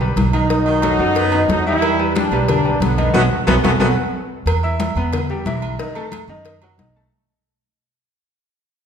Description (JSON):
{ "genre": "latin, salsa", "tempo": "182 BPM", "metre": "4/4", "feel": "straight", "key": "E minor", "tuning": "A4 = 440 Hz", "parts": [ { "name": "bright upright piano", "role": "accompaniment", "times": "0.0-7.1 s", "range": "D#3 to E6", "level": "-23 LUFS", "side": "left 2 dB", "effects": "none" }, { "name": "upright bass", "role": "bass", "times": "0.0-7.1 s", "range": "B1 to F#2", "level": "-21 LUFS", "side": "right 1 dB", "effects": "none" }, { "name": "congas", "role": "percussion", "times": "0.0-7.0 s", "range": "none", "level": "-23 LUFS", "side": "left 3 dB", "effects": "none" }, { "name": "agogo bells and timbales", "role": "percussion", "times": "0.2-6.8 s", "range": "none", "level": "-26 LUFS", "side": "right 5 dB", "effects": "none" }, { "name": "cowbell", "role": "percussion", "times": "0.2-7.0 s", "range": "none", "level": "-28 LUFS", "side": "left 3 dB", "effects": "none" }, { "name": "bright trombone section", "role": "melody", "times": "0.3-3.9 s", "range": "D3 to E4", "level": "-20 LUFS", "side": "equal", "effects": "none" }, { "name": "warm baritone saxophone", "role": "second line", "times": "0.7-3.9 s", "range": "D#3 to B3", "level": "-24 LUFS", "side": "right 1 dB", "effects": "none" } ], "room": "wet recital hall reverb, RT60 1.4 s", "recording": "recorded in a church or concert hall", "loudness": "-15 LUFS", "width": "side -7 dB against mid", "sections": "0.0-4.5 A section; 4.5-7.1 B section", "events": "band accent 3.1-4.5; drum fill 3.8-4.5; fade-out 4.5-7.1", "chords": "0.0 Em (rootless); 0.5 B7; 1.8 Em7; 3.1 B5; 4.5 Em; 5.8 B7" }